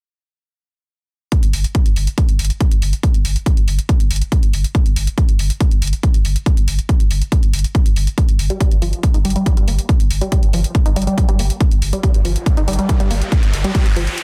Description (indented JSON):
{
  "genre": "driving peak-time techno",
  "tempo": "140 BPM",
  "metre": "4/4",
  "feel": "straight",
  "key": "unclear",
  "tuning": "A4 = 439 Hz",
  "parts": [
    { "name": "electronic hi-hat", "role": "drums", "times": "1.3-14.2 s", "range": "none", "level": "-30 LUFS", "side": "equal", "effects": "none" },
    { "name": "electronic kick drum", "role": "drums", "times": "1.3-13.8 s", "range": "none", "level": "-18 LUFS", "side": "equal", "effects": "none" },
    { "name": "saturated sub bass", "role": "bass", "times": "1.4-14.1 s", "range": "G1", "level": "-21 LUFS", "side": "equal", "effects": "sidechain pumping, low-pass filter" },
    { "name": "tight sequenced synth", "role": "riff", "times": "8.5-14.0 s", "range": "F3 to Eb4", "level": "-25 LUFS", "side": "equal", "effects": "chorus, phaser, sidechain pumping, delay" },
    { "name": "riser", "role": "sound effects", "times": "12.2-14.2 s", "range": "none", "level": "-30 LUFS", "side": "equal", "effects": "none" }
  ],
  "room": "little or no reverb",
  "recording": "dense, heavily limited modern master",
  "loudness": "-16 LUFS",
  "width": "mono",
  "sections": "1.3-14.2 A section",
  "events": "riser 12.2-14.2",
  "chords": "none",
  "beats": "| 1.32 1.75 2.18 2.61 | 3.03 3.46 3.89 4.32 | 4.75 5.18 5.61 6.03 | 6.46 6.89 7.32 7.75 | 8.18 8.61 9.03 9.46 | 9.89 10.32 10.75 11.18 | 11.61 12.03 12.46 12.89 | 13.32 13.75 14.18"
}